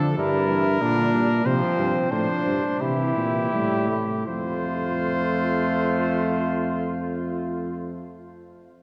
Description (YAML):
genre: classical, imitative canzona for brass ensemble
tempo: 79-96 BPM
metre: 4/4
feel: straight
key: F major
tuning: A4 = 439 Hz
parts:
  - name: warm trumpet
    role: melody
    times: 0.0-8.1 s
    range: G4 to C5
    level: -31 LUFS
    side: equal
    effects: none
  - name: warm flugelhorn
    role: second line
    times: 0.0-8.1 s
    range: C4 to F4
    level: -31 LUFS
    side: equal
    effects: none
  - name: warm trombone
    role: accompaniment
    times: 0.0-8.1 s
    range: D3 to A3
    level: -31 LUFS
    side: equal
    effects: none
  - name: warm tuba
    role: bass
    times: 0.0-8.1 s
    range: F2 to D3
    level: -28 LUFS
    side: equal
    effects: none
room: wet cathedral reverb, RT60 4.6 s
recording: none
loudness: -24 LUFS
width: mono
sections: 0.0-4.3 A section; 4.3-7.3 B section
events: slowing down 0.0-4.3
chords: 0.2 Gm; 1.5 Csus4; 2.8 C; 4.3 F